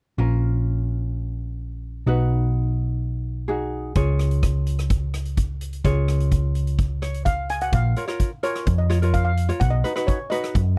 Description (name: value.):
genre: calypso.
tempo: 127 BPM.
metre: 4/4.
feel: straight.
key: unclear.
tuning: A4 = 440 Hz.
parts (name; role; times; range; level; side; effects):
ukulele; accompaniment; 0.2-10.6 s; C#4 to E#5; -31 LUFS; equal; none.
hollow-body short-scale picked electric bass; bass; 0.2-10.8 s; A#1 to F#2; -24 LUFS; equal; none.
street-band drum kit; drums; 4.0-10.7 s; hi-hat, kick drum, rim click; -27 LUFS; equal; none.
steel pan; melody; 7.3-10.8 s; C#5 to G#5; -30 LUFS; equal; none.
room: little or no reverb.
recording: dry, close 1970s-style studio recording.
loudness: -23 LUFS.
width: mono.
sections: 0.2-7.7 A section; 7.7-10.8 B section.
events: ukulele fill 6.8-7.7.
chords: 0.2 A#m; 2.1 B; 4.0 C#; 7.7 A#m; 9.6 B.